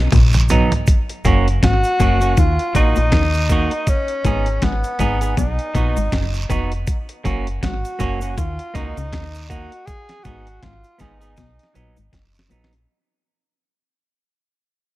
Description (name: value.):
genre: roots reggae.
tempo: 80 BPM.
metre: 4/4.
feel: swing 58% on 16ths.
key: unclear.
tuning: A4 = 438 Hz.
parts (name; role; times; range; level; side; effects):
deep dub fingered electric bass; bass; 0.0-12.8 s; F1 to Eb2; -19 LUFS; equal; none.
electric guitar at the edge of break-up; riff; 0.1-12.7 s; F2 to Eb3; -27 LUFS; left 6 dB; none.
dusty soul sampler-style drum kit; drums; 0.1-12.9 s; hi-hat, kick drum, snare drum, toms; -19 LUFS; equal; overdrive.
guiro and cabasa; percussion; 0.1-12.7 s; none; -32 LUFS; right 4 dB; none.
semi-hollow electric guitar; accompaniment; 0.5-12.7 s; F#3 to Ab4; -24 LUFS; right 4 dB; tape echo.
breathy tenor saxophone; melody; 1.6-12.1 s; Cb4 to Ab4; -23 LUFS; left 1 dB; tape echo.
room: little or no reverb.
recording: none.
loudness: -16 LUFS.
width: side -17 dB against mid.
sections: 0.9-12.9 A section.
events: drum fill 0.0-0.9, 11.4-12.9; fade-out 0.9-12.9.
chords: 0.0 B; 0.9 Gb; 2.4 Ebm; 3.9 Abm; 5.4 B; 6.9 Gb; 8.4 Ebm; 9.9 Abm; 11.4 B.